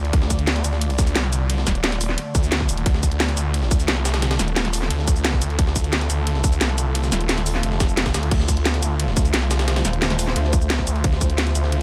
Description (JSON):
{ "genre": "dark technical drum and bass", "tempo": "176 BPM", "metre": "4/4", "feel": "straight", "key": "D phrygian", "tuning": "A4 = 437 Hz", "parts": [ { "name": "swarming drone", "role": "sustained chords", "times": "0.0-11.8 s", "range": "D3 to D5", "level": "-32 LUFS", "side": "equal", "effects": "built-in reverb, sidechain pumping" }, { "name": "snarling distorted saw bass", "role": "bass", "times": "0.0-11.8 s", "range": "Eb1 to D2", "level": "-24 LUFS", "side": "equal", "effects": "distortion" }, { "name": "breakbeat sampler-style drum kit", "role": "drums", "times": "0.0-11.8 s", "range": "hi-hat, ride cymbal, snare drum", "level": "-33 LUFS", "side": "equal", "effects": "none" }, { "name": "drum and bass drum kit", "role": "drums", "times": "0.1-11.8 s", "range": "crash cymbal, hi-hat, shaker, snare drum", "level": "-26 LUFS", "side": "equal", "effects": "none" }, { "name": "electronic kick drum", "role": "drums", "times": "0.1-11.3 s", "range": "none", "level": "-23 LUFS", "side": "equal", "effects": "overdrive" } ], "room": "digital ambience", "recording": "none", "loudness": "-21 LUFS", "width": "mono", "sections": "0.0-11.8 A section", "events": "none", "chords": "0.0 Dm" }